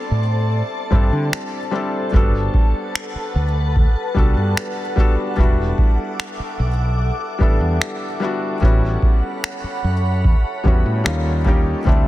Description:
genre	contemporary R&B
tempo	74 BPM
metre	4/4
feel	straight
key	E minor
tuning	A4 = 440 Hz
part	felt-muted upright piano	accompaniment	0.0-12.1 s	G3 to A4	-24 LUFS	left 2 dB	none
part	glassy FM pad	sustained chords	0.0-12.1 s	A4 to D6	-27 LUFS	equal	ensemble chorus, built-in reverb
part	fretless electric bass	bass	0.1-12.1 s	E1 to D3	-19 LUFS	equal	none
part	booming analog drum machine	drums	0.9-12.1 s	finger snaps, kick drum	-17 LUFS	equal	soft clipping on snare
room	little or no reverb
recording	dense, heavily limited modern master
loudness	-16 LUFS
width	side -16 dB against mid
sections	0.0-12.1 A section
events	none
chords	0.0 D7sus4; 2.1 Gmaj9; 5.4 Em9; 8.6 A13; 11.1 D#9

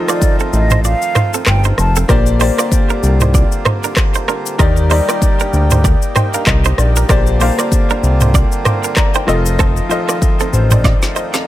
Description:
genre	afrobeats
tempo	96 BPM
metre	4/4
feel	swing 58% on 16ths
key	Bb major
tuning	A4 = 440 Hz
part	clear concert grand piano	accompaniment	0.0-11.5 s	Eb3 to D6	-20 LUFS	left 4 dB	none
part	pedal harmonium	sustained chords	0.0-11.5 s	D3 to G4	-23 LUFS	right 2 dB	none
part	direct-recorded clean electric guitar	riff	0.0-11.4 s	C4 to D5	-21 LUFS	right 9 dB	tremolo, digital delay
part	hollow concert flute	melody	0.1-1.9 s	D5 to A5	-21 LUFS	right 2 dB	digital delay
part	afro-pop drum kit	drums	0.1-11.5 s	handclaps, hi-hat, kick drum, rim click, shaker, snare drum, toms	-14 LUFS	equal	none
part	fat analog bass	bass	0.5-10.9 s	F1 to Eb2	-13 LUFS	equal	none
room	little or no reverb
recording	none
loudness	-11 LUFS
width	side -14 dB against mid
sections	0.0-11.5 A section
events	kick muted 0.8-2.1; grand piano fill 5.8-7.1, 10.2-11.5; drum fill 10.8-11.5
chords	0.0 F7; 2.1 Bb69; 9.3 F7

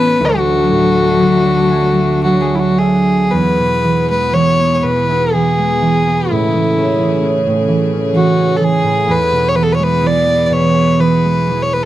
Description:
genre	celtic folk, Celtic slow air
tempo	55-65 BPM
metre	3/4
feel	rubato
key	E mixolydian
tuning	A4 = 440 Hz
part	warm fiddle	melody	0.0-11.9 s	E4 to D5	-15 LUFS	equal	none
part	rich cello	second line	0.0-2.8 s	F#3 to B3	-19 LUFS	left 5 dB	none
part	concert harp	accompaniment	0.0-11.9 s	D2 to G#5	-15 LUFS	right 2 dB	none
part	bright chamber string section	sustained chords	0.0-11.9 s	C#3 to A4	-20 LUFS	left 2 dB	none
room	light reverb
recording	dry, close 1970s-style studio recording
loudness	-11 LUFS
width	side -14 dB against mid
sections	0.0-3.3 A section; 3.3-11.9 B section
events	harp fill 1.2-3.3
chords	0.2 D; 3.3 E; 6.3 Amaj7; 9.1 E

